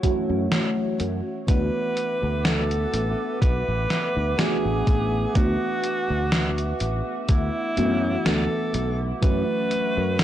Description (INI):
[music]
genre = vaporwave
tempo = 62 BPM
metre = 4/4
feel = swing 54% on 16ths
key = D major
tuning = A4 = 441 Hz
[part]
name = mellow FM electric piano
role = accompaniment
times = 0.0-10.2 s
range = E3 to F#4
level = -28 LUFS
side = equal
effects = phaser, wide subtle chorus, tape echo
[part]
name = warbly tape-like pad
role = sustained chords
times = 0.0-10.2 s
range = A3 to D6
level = -33 LUFS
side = right 1 dB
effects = chorus, built-in reverb
[part]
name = electronic kick drum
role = drums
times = 0.0-9.4 s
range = none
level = -20 LUFS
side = equal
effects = none
[part]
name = gated 80s digital drum machine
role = drums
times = 0.0-10.2 s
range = hi-hat, snare drum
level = -25 LUFS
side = equal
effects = gated reverb, gated reverb snare
[part]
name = sustaining fretless electric bass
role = bass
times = 0.3-10.2 s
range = A1 to F#2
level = -26 LUFS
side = equal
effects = tube saturation, analog chorus
[part]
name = bright alto saxophone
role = melody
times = 1.5-10.2 s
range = E4 to B4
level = -27 LUFS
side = equal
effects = tape echo
[sound]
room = digital ambience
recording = dry, gritty hardware recording, transformer saturation, cassette tape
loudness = -21 LUFS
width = side -12 dB against mid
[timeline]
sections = 0.0-1.5 A section; 1.5-10.2 B section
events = none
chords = 0.0 F#m7; 1.5 D69; 9.2 F#m7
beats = 0.52 | 1.49 2.45 3.42 4.39 | 5.36 6.32 7.29 8.26 | 9.23 10.20